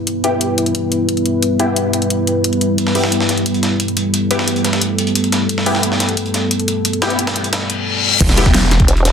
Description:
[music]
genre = dark technical drum and bass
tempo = 177 BPM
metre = 4/4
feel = straight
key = E minor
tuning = A4 = 440 Hz
[part]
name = deep dark ambient pad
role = sustained chords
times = 0.0-7.8 s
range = G3 to B4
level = -17 LUFS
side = equal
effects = chorus, built-in reverb, sidechain pumping
[part]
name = dubstep drum kit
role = drums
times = 0.1-9.1 s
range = crash cymbal, hi-hat, snare drum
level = -19 LUFS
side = left 2 dB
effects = overdrive
[part]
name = orchestra-hit-like synth stab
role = stabs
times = 0.2-8.5 s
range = B3 to G4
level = -22 LUFS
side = left 2 dB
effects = built-in reverb, phaser, tape echo
[part]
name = breakbeat sampler-style drum kit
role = drums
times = 2.8-9.1 s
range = hi-hat, snare drum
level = -21 LUFS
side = right 1 dB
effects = high-pass filter on hats, soft clipping on snare, high-pass filter on snare, high-pass filter on room
[part]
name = reverse cymbal and impact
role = sound effects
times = 7.7-9.1 s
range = none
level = -18 LUFS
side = left 4 dB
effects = none
[part]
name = snarling distorted saw bass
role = bass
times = 8.2-8.9 s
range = E1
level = -15 LUFS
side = equal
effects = distortion, overdrive
[part]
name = electronic kick drum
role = drums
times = 8.2-8.9 s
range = none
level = -14 LUFS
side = equal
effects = overdrive
[part]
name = vowel-sweep wobble bass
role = bass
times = 8.9-9.1 s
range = E1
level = -13 LUFS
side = equal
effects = chorus
[sound]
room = moderate lush hall reverb, RT60 1.9 s, digital ambience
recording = dense, heavily limited modern master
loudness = -13 LUFS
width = side -7 dB against mid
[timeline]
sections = 0.0-8.2 A section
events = filter sweep on synth stab 0.0-8.2; reverse cymbal 7.7-8.2; impact 8.2-9.1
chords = 0.0 Em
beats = | 0.07 0.41 0.75 1.09 | 1.43 1.76 2.10 2.44 | 2.78 3.12 3.46 3.80 | 4.14 4.48 4.82 5.15 | 5.49 5.83 6.17 6.51 | 6.85 7.19 7.53 7.87 | 8.21 8.54 8.88

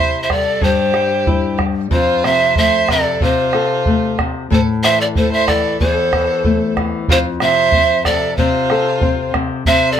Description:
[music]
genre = andean folk, Andean ensemble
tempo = 93 BPM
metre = 2/4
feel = straight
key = unclear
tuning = A4 = 441 Hz
[part]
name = breathy mellow pan flute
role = melody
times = 0.0-10.0 s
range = C5 to E5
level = -16 LUFS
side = right 1 dB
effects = tape echo
[part]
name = rich violin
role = second line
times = 0.0-10.0 s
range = F4 to C5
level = -21 LUFS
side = right 4 dB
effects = none
[part]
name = nylon-string guitar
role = accompaniment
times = 0.0-10.0 s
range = E2 to A4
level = -19 LUFS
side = left 5 dB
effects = none
[part]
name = bombo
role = percussion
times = 0.3-9.8 s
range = none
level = -20 LUFS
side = right 1 dB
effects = none
[sound]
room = light reverb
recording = none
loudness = -13 LUFS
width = side -9 dB against mid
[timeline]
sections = 0.0-7.1 A section; 7.1-10.0 A section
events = none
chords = 0.0 C; 1.9 F; 4.5 Am; 7.1 F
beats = | 0.63 1.27 | 1.92 2.57 | 3.21 3.86 | 4.50 5.15 | 5.80 6.44 | 7.09 7.74 | 8.38 9.03 | 9.67

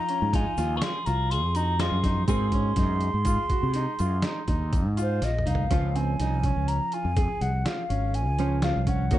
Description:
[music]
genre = progressive instrumental, band music in an uneven meter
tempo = 123 BPM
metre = 7/4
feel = straight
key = Db major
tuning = A4 = 440 Hz
[part]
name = mellow hollow jazz flute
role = melody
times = 0.0-9.2 s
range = C5 to Db6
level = -30 LUFS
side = equal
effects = none
[part]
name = clean electric guitar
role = second line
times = 0.0-5.2 s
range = F4 to Bb4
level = -36 LUFS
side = left 7 dB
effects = none
[part]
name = hollow-body jazz guitar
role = accompaniment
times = 0.0-9.2 s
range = Eb3 to Eb5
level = -35 LUFS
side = right 5 dB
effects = none
[part]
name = bright concert grand piano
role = arpeggios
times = 0.1-9.2 s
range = Bb3 to Ab4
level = -34 LUFS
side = equal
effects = none
[part]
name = trip hop sampler-style drum kit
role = drums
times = 0.1-9.2 s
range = hi-hat, kick drum, snare drum, toms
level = -28 LUFS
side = equal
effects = none
[part]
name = fretless electric bass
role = bass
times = 0.2-9.2 s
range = Ab1 to C3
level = -26 LUFS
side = equal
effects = none
[part]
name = tube shaker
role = percussion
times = 0.6-5.3 s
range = none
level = -47 LUFS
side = left 9 dB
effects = none
[sound]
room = light reverb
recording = nothing above 10.8 kHz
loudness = -23 LUFS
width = side -14 dB against mid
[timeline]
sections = 0.0-5.7 A section; 5.7-9.2 B section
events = drum fill 5.2-5.7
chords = 0.0 Fm7; 2.3 Ab9; 5.7 Dbmaj7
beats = 0.34 0.83 1.31 1.80 | 2.29 2.78 3.27 3.75 4.24 4.73 5.22 | 5.71 6.20 6.68 7.17 7.66 8.15 8.64 | 9.13

